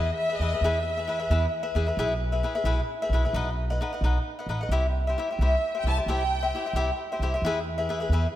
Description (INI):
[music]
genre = mexican folk, mariachi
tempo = 88 BPM (dotted quarters)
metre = 6/8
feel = straight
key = E major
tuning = A4 = 436 Hz
[part]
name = warm symphonic violin section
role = melody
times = 0.0-1.7, 5.4-7.0 s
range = D#5 to A5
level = -30 LUFS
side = equal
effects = diffuse ambient delay
[part]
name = cavaquinho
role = accompaniment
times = 0.0-8.3 s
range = D#4 to F#5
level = -28 LUFS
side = left 2 dB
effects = none
[part]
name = upright bass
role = bass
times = 0.0-8.3 s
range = A1 to E2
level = -26 LUFS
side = equal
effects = none
[sound]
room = moderate lush hall reverb, RT60 2.3 s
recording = dreamy mix soaked in reverb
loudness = -24 LUFS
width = side -13 dB against mid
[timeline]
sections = 0.0-8.4 A section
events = none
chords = 0.0 E; 2.0 E/B; 3.3 B; 4.7 C; 7.4 E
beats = | 0.63 1.30 | 1.98 2.66 | 3.34 4.02 | 4.71 5.39 | 6.08 6.75 | 7.43 8.11